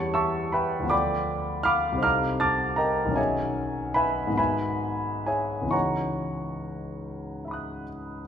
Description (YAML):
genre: classical, impressionist solo piano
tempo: 43-54 BPM (dotted quarters)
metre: 6/8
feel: rubato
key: unclear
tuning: A4 = 441 Hz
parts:
  - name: clear grand piano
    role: solo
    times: 0.0-8.3 s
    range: B1 to A6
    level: -24 LUFS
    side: equal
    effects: none
room: wet recital hall reverb, RT60 1.8 s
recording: minimal, uncompressed stereo recording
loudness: -24 LUFS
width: side -8 dB against mid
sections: 0.0-8.3 A section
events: none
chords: 0.0 Em6; 0.9 Dm6; 2.0 Cm6; 3.2 B69; 4.4 G#m7; 5.7 C#m11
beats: | 0.92 2.04 | 3.17 4.38 | 5.74 7.03